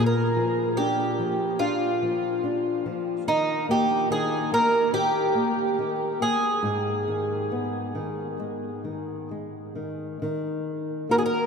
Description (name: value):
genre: fado-style ballad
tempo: 65-73 BPM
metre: 4/4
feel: rubato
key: unclear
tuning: A4 = 440 Hz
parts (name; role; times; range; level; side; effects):
- fingerpicked twelve-string acoustic guitar; melody; 0.0-11.5 s; D#4 to A#4; -24 LUFS; right 1 dB; none
- nylon-string guitar; accompaniment; 0.0-11.5 s; G#2 to Gb4; -27 LUFS; left 2 dB; none
room: wet huge ambient reverb, RT60 8.1 s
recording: in a vast, echoing space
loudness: -23 LUFS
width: side -6 dB against mid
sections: 0.0-10.2 A section; 10.2-11.5 B section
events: none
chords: 0.0 A#; 3.2 D#; 6.6 G#5; 10.2 Ebm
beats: 0.75 1.58 2.41 | 3.25 4.08 4.92 5.77 | 6.63 7.50 8.38 9.29 | 10.20 11.08